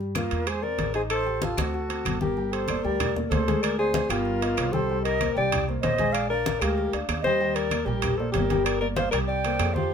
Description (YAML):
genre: Afro-Cuban jazz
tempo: 191 BPM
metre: 4/4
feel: straight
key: G minor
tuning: A4 = 441 Hz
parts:
  - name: dark concert grand piano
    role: accompaniment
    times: 0.0-9.9 s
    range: F3 to Ab5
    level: -31 LUFS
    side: left 3 dB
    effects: none
  - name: upright bass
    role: bass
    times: 0.0-9.9 s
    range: G1 to G2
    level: -30 LUFS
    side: right 2 dB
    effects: none
  - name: congas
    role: percussion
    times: 0.0-9.9 s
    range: none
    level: -32 LUFS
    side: left 4 dB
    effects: none
  - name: claves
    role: percussion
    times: 0.1-9.8 s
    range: none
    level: -38 LUFS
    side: left 6 dB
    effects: none
  - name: mellow alto saxophone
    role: melody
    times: 0.2-9.9 s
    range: F4 to D5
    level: -28 LUFS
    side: left 4 dB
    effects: none
  - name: concert flute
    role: second line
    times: 0.2-9.9 s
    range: A4 to G5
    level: -31 LUFS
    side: right 6 dB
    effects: none
  - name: timbales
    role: percussion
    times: 0.2-9.8 s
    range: none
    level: -33 LUFS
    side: right 7 dB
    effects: none
room: light reverb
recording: minimal, uncompressed stereo recording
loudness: -23 LUFS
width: side -7 dB against mid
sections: 0.0-2.4 A section; 2.4-9.9 B section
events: none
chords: 0.5 Eaug7; 1.1 Am7b5; 1.7 D7; 2.4 Gmadd9; 3.6 Bb13; 4.3 G7alt; 4.9 Cm7; 6.1 Bb7; 7.4 Ebmaj7; 8.7 Gm; 9.3 Csus2